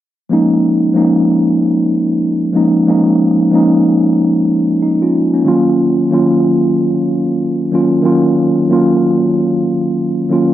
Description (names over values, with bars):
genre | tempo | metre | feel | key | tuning
hip hop | 93 BPM | 4/4 | swing 57% on 16ths | unclear | A4 = 441 Hz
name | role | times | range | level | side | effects
mellow tine electric piano | accompaniment | 0.3-10.5 s | Eb3 to F4 | -10 LUFS | equal | medium stereo tremolo, cassette tape, high-pass filter, low-pass filter
room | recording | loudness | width
moderate plate reverb, RT60 2.8 s | none | -10 LUFS | side -12 dB against mid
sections
0.3-10.5 A section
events
none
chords
0.3 Db6; 5.5 Ebm7